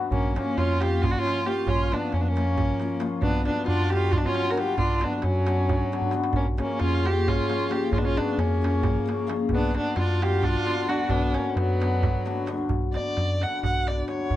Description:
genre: balkan folk, Balkan wedding band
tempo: 267 BPM (eighths)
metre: 7/8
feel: straight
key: B hungarian minor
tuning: A4 = 442 Hz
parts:
  - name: cimbalom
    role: accompaniment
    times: 0.0-14.4 s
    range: C#3 to E#4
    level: -29 LUFS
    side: left 5 dB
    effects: none
  - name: dark violin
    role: melody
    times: 0.1-14.4 s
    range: B3 to F#5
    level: -28 LUFS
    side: equal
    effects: plate reverb
  - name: accordion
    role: second line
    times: 0.1-12.5 s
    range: F#3 to F#4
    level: -31 LUFS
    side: right 2 dB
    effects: none
  - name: rubbery square bass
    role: bass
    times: 0.1-14.4 s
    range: A#1 to F#2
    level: -25 LUFS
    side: equal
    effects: none
  - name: darbuka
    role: percussion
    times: 0.1-14.4 s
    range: none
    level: -30 LUFS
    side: right 3 dB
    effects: none
room: light reverb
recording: dark, warm production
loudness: -22 LUFS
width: side -13 dB against mid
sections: 0.1-12.7 A section; 12.7-14.4 B section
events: drum fill 6.0-6.3; violin solo 12.7-14.4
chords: 0.1 A#m; 3.2 Bm; 6.3 A#m; 9.5 Bm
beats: | 0.11 0.33 0.56 0.78 1.00 1.23 1.45 | 1.67 1.89 2.12 2.34 2.56 2.78 3.01 | 3.23 3.45 3.67 3.90 4.12 4.34 4.57 | 4.79 5.01 5.23 5.46 5.68 5.90 6.13 | 6.35 6.57 6.80 7.02 7.25 7.47 7.70 | 7.92 8.15 8.37 8.60 8.82 9.05 9.28 | 9.50 9.73 9.96 10.18 10.41 10.64 10.87 | 11.10 11.32 11.55 11.78 12.01 12.24 12.47 | 12.70 12.93 13.16 13.38 13.62 13.84 14.07 | 14.30

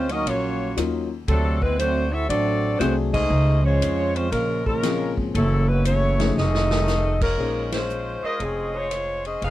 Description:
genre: jazz, big band swing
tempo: 118 BPM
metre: 4/4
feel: swing 67% on 8ths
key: unclear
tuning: A4 = 439 Hz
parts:
  - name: clear saxophone section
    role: melody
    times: 0.0-9.5 s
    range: Eb3 to F5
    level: -25 LUFS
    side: left 2 dB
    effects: none
  - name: warm trombone section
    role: second line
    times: 0.0-7.2 s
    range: C3 to Fb4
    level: -27 LUFS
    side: right 5 dB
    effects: none
  - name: upright bass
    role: bass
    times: 0.0-9.5 s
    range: F1 to F2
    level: -24 LUFS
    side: equal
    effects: none
  - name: swinging big-band drum kit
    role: drums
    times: 0.1-9.5 s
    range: crash cymbal, hi-hat, kick drum, ride cymbal, rim click, snare drum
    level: -31 LUFS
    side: equal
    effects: none
  - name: warm baby grand piano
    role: accompaniment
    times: 0.8-8.8 s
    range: F3 to C5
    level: -27 LUFS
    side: left 6 dB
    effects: none
  - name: clear trumpet section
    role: stabs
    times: 8.2-8.9 s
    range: Ab4 to Eb5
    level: -29 LUFS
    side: right 1 dB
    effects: none
room: little or no reverb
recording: none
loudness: -20 LUFS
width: side -14 dB against mid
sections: 0.0-7.4 A section; 7.4-9.5 B section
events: band accent 3.1, 7.1, 7.6; drum fill 6.4-6.9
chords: 0.0 Ebm9; 1.3 D7#11; 3.3 Dbmaj7; 4.3 Bbm9; 5.3 Gbm7; 6.4 F7alt; 7.4 Bbm11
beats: 0.26 0.77 | 1.28 1.79 2.29 2.80 | 3.31 3.82 4.33 4.84 | 5.34 5.85 6.36 6.87 | 7.38 7.89 8.40 8.91 | 9.42

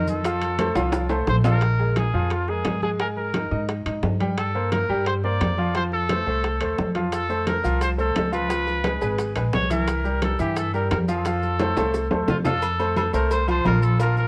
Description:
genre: latin, salsa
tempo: 174 BPM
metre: 4/4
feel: straight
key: unclear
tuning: A4 = 441 Hz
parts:
  - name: clear trumpet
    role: melody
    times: 0.0-14.3 s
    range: F4 to D5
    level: -30 LUFS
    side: equal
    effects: none
  - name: clear baby grand piano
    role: accompaniment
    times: 0.0-14.3 s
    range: Eb3 to Ab5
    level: -28 LUFS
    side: equal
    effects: none
  - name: upright bass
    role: bass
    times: 0.0-14.3 s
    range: Ab1 to Ab2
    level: -28 LUFS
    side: equal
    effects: none
  - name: congas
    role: percussion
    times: 0.1-14.3 s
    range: none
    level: -32 LUFS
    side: equal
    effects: none
  - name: maracas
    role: percussion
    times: 0.1-1.6, 7.1-14.3 s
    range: none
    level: -48 LUFS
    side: equal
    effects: none
  - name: bongos and cowbell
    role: percussion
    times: 0.2-14.2 s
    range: none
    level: -34 LUFS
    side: equal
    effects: none
  - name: timbales and agogo bells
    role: percussion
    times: 0.2-14.2 s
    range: none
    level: -34 LUFS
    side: equal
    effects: none
room: light reverb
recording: worn, warbling old tape, cassette tape, warbly pitch drift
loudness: -23 LUFS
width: mono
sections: 0.0-1.6 A section; 1.6-12.6 B section; 12.6-14.3 A section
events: drum fill 0.8-1.6, 11.6-12.6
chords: 0.2 F; 1.6 Bb5; 3.0 Absus2; 4.4 C5/G; 5.8 F; 8.5 Db7; 9.9 C7; 11.3 F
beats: | 0.25 0.59 0.93 1.28 | 1.62 1.97 2.31 2.65 | 3.00 3.34 3.69 4.03 | 4.38 4.72 5.06 5.41 | 5.75 6.10 6.44 6.78 | 7.13 7.47 7.82 8.16 | 8.50 8.85 9.19 9.53 | 9.88 10.22 10.56 10.91 | 11.25 11.60 11.94 12.28 | 12.63 12.97 13.31 13.66 | 14.00

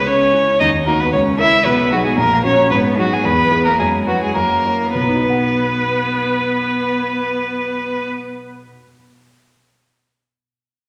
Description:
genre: quick classical-period movement for piano trio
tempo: 100-114 BPM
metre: 2/4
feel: straight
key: B major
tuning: A4 = 440 Hz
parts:
  - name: warm violin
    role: melody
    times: 0.0-8.1 s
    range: F#4 to E5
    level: -18 LUFS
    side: equal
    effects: none
  - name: dark concert grand piano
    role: accompaniment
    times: 0.0-9.0 s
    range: A#1 to F#5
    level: -24 LUFS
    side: equal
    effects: none
  - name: rich cello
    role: second line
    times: 0.1-8.1 s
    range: F#3 to E4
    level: -23 LUFS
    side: equal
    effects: none
room: wet recital hall reverb, RT60 1.6 s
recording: none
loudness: -16 LUFS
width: mono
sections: 0.0-5.0 A section; 5.0-7.3 B section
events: slowing down 2.2-5.0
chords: 0.0 C#m; 0.6 D#m; 1.1 A#dim/C#; 1.6 G#m/B; 2.2 F#/A#; 2.7 G#m; 3.2 E; 3.8 F#7sus4; 4.4 F#7; 5.0 B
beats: 0.07 | 0.59 1.12 | 1.65 2.17 | 2.71 3.24 | 3.79 4.36 | 4.96 5.54 | 6.13 6.73

